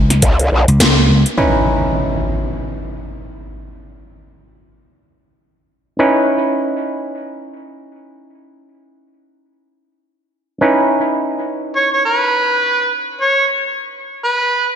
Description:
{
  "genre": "glitch hop",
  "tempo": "free time",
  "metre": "none",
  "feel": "none",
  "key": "C# minor",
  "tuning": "A4 = 437 Hz",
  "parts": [
    { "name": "vintage slap bass", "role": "bass", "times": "0.0-1.2 s", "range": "C#2", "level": "-12 LUFS", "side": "equal", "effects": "none" },
    { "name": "drum and bass drum kit", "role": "drums", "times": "0.1-1.5 s", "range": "crash cymbal, hi-hat, snare drum", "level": "-16 LUFS", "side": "equal", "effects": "low-pass filter on hats, low-pass filter on snare, low-pass filter on cymbals, low-pass filter on room" },
    { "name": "growl bass", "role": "bass", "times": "0.2-0.7 s", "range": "B1 to C#2", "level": "-13 LUFS", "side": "equal", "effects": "chorus, overdrive" },
    { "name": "auto-wah clav", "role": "stabs", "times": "1.4-14.8 s", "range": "C#4 to B4", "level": "-17 LUFS", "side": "right 1 dB", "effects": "sidechain pumping, tape echo" },
    { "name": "impact", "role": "sound effects", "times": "1.4-3.7 s", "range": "none", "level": "-21 LUFS", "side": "equal", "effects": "none" },
    { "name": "overdriven harmonica", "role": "melody", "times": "11.8-14.7 s", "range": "B4 to C#5", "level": "-14 LUFS", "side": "right 1 dB", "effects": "tape echo" }
  ],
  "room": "wet lush hall reverb, RT60 1.9 s, digital ambience",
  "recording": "dreamy mix soaked in reverb",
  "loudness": "-13 LUFS",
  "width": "side -8 dB against mid",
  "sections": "0.0-1.4 A section; 1.4-14.8 B section",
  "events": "band accent 0.8; impact 1.4-3.7",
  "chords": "0.0 N.C.; 1.4 C#m9"
}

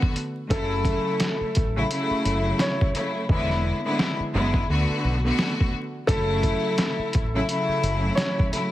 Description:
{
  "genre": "hip hop, boom-bap hip-hop",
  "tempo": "86 BPM",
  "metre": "4/4",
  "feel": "swing 57% on 16ths",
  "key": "F# minor",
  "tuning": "A4 = 441 Hz",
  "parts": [
    { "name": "clear symphonic string section", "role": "accompaniment", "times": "0.0-8.7 s", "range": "C#3 to F#4", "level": "-25 LUFS", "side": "left 1 dB", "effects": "cassette tape" },
    { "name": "trip hop sampler-style drum kit", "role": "drums", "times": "0.0-8.7 s", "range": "hi-hat, kick drum, snare drum", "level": "-24 LUFS", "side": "equal", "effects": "overdrive" },
    { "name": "warm upright piano", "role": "melody", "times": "0.5-8.5 s", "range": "A4 to C#5", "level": "-29 LUFS", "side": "equal", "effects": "digital delay" },
    { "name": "deep dub fingered electric bass", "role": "bass", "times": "0.5-8.1 s", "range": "E1 to D2", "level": "-26 LUFS", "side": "equal", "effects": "none" }
  ],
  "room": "small room reverb",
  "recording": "heavily compressed radio sound, vinyl crackle",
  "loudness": "-21 LUFS",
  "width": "side -14 dB against mid",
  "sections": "0.0-8.7 A section",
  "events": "hi-hats muted 3.3-6.1",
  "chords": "0.0 D6; 0.5 F#m7; 3.3 E7; 4.7 D6; 6.1 F#m7"
}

